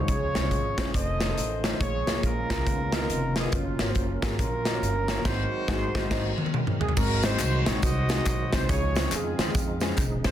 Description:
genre	uptempo gospel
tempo	139 BPM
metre	4/4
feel	swing 62% on 8ths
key	Db major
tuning	A4 = 439 Hz
part	warm horn section	melody	0.0-10.3 s	Bb3 to Eb5	-31 LUFS	right 1 dB	slapback echo
part	warm upright piano	accompaniment	0.0-10.3 s	Ab2 to Eb5	-33 LUFS	left 3 dB	none
part	percussive tonewheel organ	sustained chords	0.0-10.3 s	Db3 to Bb4	-37 LUFS	right 5 dB	slow rotary speaker, chorus vibrato
part	upright bass	bass	0.0-10.3 s	Fb1 to F2	-30 LUFS	equal	none
part	modern studio drum kit	drums	0.1-10.3 s	crash cymbal, hi-hat, kick drum, snare drum, toms	-27 LUFS	equal	none
part	tambourine and handclaps	percussion	7.0-10.3 s	none	-38 LUFS	left 2 dB	none
room	light reverb, small room reverb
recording	dense, heavily limited modern master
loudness	-24 LUFS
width	side -11 dB against mid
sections	0.0-7.0 A section; 7.0-10.3 B section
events	band accent 5.3-7.0; drum fill 6.1-7.0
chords	0.1 Dbmaj7; 0.9 F7b13; 1.8 Bbm7; 2.7 Db13; 3.5 Gbmaj7; 5.3 Ab7; 8.7 Dbmaj7

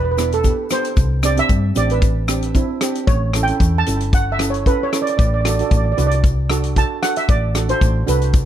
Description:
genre	calypso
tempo	114 BPM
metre	4/4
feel	swing 53% on 16ths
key	unclear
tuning	A4 = 440 Hz
part	steel pan	melody	0.0-8.3 s	A4 to A5	-21 LUFS	right 3 dB	digital delay
part	hollow-body short-scale fingered electric bass	bass	0.0-8.5 s	E1 to G2	-19 LUFS	left 1 dB	none
part	steel pan	accompaniment	0.2-8.4 s	B3 to B4	-24 LUFS	right 4 dB	none
part	warm soul drum kit	drums	0.2-8.5 s	hi-hat, kick drum, rim click	-18 LUFS	left 1 dB	none
part	tube shaker	percussion	0.2-8.5 s	none	-32 LUFS	left 7 dB	none
room	light reverb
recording	dark, warm production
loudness	-15 LUFS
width	side -11 dB against mid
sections	0.0-8.5 A section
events	steel pan solo 0.0-8.5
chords	0.0 G; 1.0 Csus2; 3.1 A7; 5.2 D/A

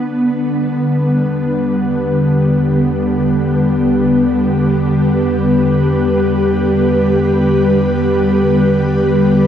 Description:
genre	ambient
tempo	free time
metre	none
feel	none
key	unclear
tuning	A4 = 440 Hz
part	ethereal airy pad	sustained chords	0.0-9.5 s	D3 to B4	-12 LUFS	equal	ensemble chorus, built-in reverb
part	deep rumbling drone	bass	1.3-9.5 s	E2	-25 LUFS	equal	built-in reverb
room	wet huge ambient reverb, RT60 8.5 s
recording	dark, warm production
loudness	-12 LUFS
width	side -9 dB against mid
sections	0.0-9.5 A section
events	fade-out on synth drone 0.0-9.5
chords	0.0 G/E

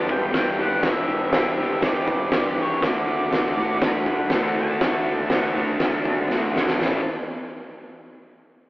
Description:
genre	garage rock duo or trio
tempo	121 BPM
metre	4/4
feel	straight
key	unclear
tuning	A4 = 440 Hz
part	octave-fuzz lead guitar	melody	0.0-7.0 s	C#5 to B5	-29 LUFS	equal	distortion
part	overdriven electric guitar	riff	0.0-7.0 s	G2 to G4	-25 LUFS	equal	none
part	fuzz fingered electric bass	bass	0.0-7.0 s	E1 to A2	-31 LUFS	equal	overdrive
part	oversized low-tuned drum kit	drums	0.1-6.9 s	hi-hat, kick drum, snare drum	-23 LUFS	equal	none
room	moderate studio reverb, RT60 0.6 s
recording	rough rehearsal-room recording, warm saturation, telephone sound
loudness	-20 LUFS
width	side -19 dB against mid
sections	0.0-6.8 A section; 6.8-8.7 B section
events	drum fill 6.3-6.8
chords	0.0 G; 2.8 D; 6.8 A

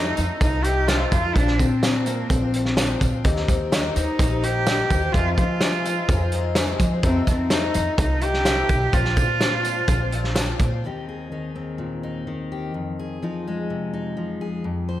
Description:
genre	indie folk with a building arrangement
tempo	127 BPM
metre	4/4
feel	straight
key	Eb major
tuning	A4 = 439 Hz
part	warm cello	melody	0.0-10.4 s	Bb3 to G4	-24 LUFS	equal	slapback echo
part	picked twelve-string acoustic guitar	accompaniment	0.0-10.8 s	F2 to G4	-29 LUFS	left 6 dB	slapback echo
part	upright bass	bass	0.0-10.8 s	Bb1 to F3	-25 LUFS	right 1 dB	none
part	loose indie drum kit	drums	0.2-10.7 s	hi-hat, kick drum, snare drum	-22 LUFS	equal	none
part	tambourine	percussion	0.2-10.5 s	none	-39 LUFS	right 10 dB	none
part	fingerpicked steel-string acoustic guitar	accompaniment	10.8-15.0 s	Eb2 to C5	-27 LUFS	left 2 dB	slapback echo
room	moderate recital hall reverb, RT60 1.5 s, studio reverb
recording	big arena sound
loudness	-20 LUFS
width	side -13 dB against mid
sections	0.0-10.8 A section; 10.8-15.0 B section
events	none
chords	0.0 F7; 1.4 Bbadd9; 3.3 Eb6; 5.1 Fm7; 7.0 F7; 8.9 Bbadd9; 10.8 Eb6; 12.7 Fm7

